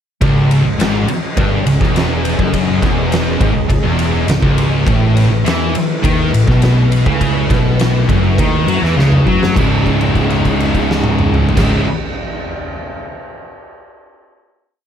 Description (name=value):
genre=stoner and doom metal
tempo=103 BPM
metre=4/4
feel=straight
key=C# minor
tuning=A4 = 440 Hz
part: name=string machine, violas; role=sustained chords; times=0.2-11.8 s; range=A3 to D#5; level=-26 LUFS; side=right 1 dB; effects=ensemble chorus
part: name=high-gain distorted guitar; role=riff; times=0.2-11.8 s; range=C#2 to E4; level=-20 LUFS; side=left 1 dB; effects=distortion
part: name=thick fuzz guitar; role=riff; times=0.2-11.8 s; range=C#2 to F#3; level=-18 LUFS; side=left 7 dB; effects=distortion
part: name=thick fuzz guitar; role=riff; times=0.2-11.9 s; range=C#2 to F#3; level=-18 LUFS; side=right 6 dB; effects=distortion
part: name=fingered electric bass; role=bass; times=0.2-11.8 s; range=C#1 to F#2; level=-19 LUFS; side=equal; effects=overdrive
part: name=oversized low-tuned drum kit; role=drums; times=0.2-11.7 s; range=crash cymbal, kick drum, ride cymbal, snare drum, toms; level=-18 LUFS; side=equal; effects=none
room=light reverb, small room ambience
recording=none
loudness=-11 LUFS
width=side -9 dB against mid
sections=0.2-9.6 riff; 9.6-11.9 final chord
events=drum fill 9.0-9.6; held note 9.6-11.6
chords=0.2 C#m; 4.9 A5; 9.6 C#m